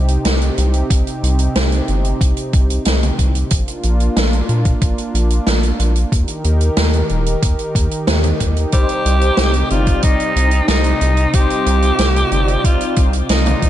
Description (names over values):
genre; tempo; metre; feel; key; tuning
synthwave; 92 BPM; 4/4; straight; C minor; A4 = 440 Hz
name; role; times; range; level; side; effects
warm analog pad; sustained chords; 0.0-13.7 s; C3 to Bb4; -23 LUFS; right 1 dB; chorus, sidechain pumping
round analog bass; bass; 0.0-13.7 s; Eb1 to Bb2; -16 LUFS; equal; sidechain pumping
swinging big-band drum kit; drums; 0.1-13.7 s; hi-hat, snare drum, toms; -20 LUFS; right 1 dB; gated reverb
electronic kick drum; drums; 0.9-13.7 s; none; -16 LUFS; equal; overdrive
growling alto saxophone; melody; 8.7-13.7 s; Eb4 to G4; -18 LUFS; equal; ping-pong delay
mellow synth brass; stabs; 8.7-13.6 s; G3 to D5; -23 LUFS; left 3 dB; chorus, phaser
room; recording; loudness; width
light reverb, small room reverb; nothing above 10.6 kHz; -13 LUFS; side -12 dB against mid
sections
0.0-13.7 A section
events
none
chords
0.0 Cm; 3.5 Bb; 6.1 Eb; 8.7 Cm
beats
0.25 | 0.90 1.56 2.21 2.86 | 3.51 4.17 4.82 5.47 | 6.12 6.77 7.43 8.08 | 8.73 9.38 10.03 10.69 | 11.34 11.99 12.64 13.29